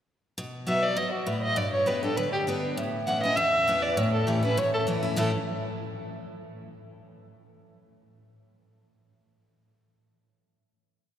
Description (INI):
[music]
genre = bluegrass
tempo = 200 BPM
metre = 4/4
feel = swing 53% on 8ths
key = A mixolydian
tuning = A4 = 444 Hz
[part]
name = picked steel-string acoustic guitar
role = accompaniment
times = 0.4-5.3 s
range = E2 to G4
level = -29 LUFS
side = equal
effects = none
[part]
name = dark fiddle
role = melody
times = 0.7-5.3 s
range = F#4 to F#5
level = -26 LUFS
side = equal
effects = none
[sound]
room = wet cathedral reverb, RT60 4.5 s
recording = recorded in a church or concert hall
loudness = -24 LUFS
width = side -10 dB against mid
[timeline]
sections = 0.4-5.2 A section; 5.2-6.4 final chord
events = none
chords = 0.4 B; 1.6 G; 2.8 Aadd9; 4.0 A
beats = | 0.37 0.67 0.97 1.27 | 1.57 1.87 2.17 2.47 | 2.77 3.07 3.37 3.67 | 3.97 4.27 4.57 4.87 | 5.17